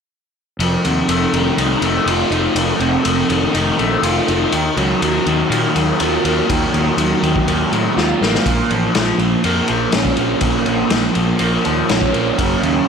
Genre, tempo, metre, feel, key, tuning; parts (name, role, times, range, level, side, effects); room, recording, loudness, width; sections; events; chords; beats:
psychedelic rock; 122 BPM; 4/4; straight; F phrygian dominant; A4 = 440 Hz
raw garage guitar; riff; 0.6-12.9 s; F2 to F4; -16 LUFS; right 1 dB; overdrive, phaser
fuzz fingered electric bass; bass; 0.6-12.8 s; F1 to Bb2; -21 LUFS; equal; overdrive
raw garage drum kit; drums; 0.6-12.7 s; kick drum, ride cymbal, snare drum; -20 LUFS; left 4 dB
light reverb, small room ambience; 1960s-style stereo; -14 LUFS; side -6 dB against mid
0.6-12.9 A section
drum fill 8.0-8.5
0.6 F7; 4.5 Ebmadd9; 8.5 Bbm
| 0.60 1.09 1.58 2.07 | 2.56 3.06 3.55 4.04 | 4.53 5.02 5.51 6.00 | 6.49 6.98 7.47 7.96 | 8.45 8.95 9.44 9.93 | 10.42 10.91 11.40 11.89 | 12.38 12.87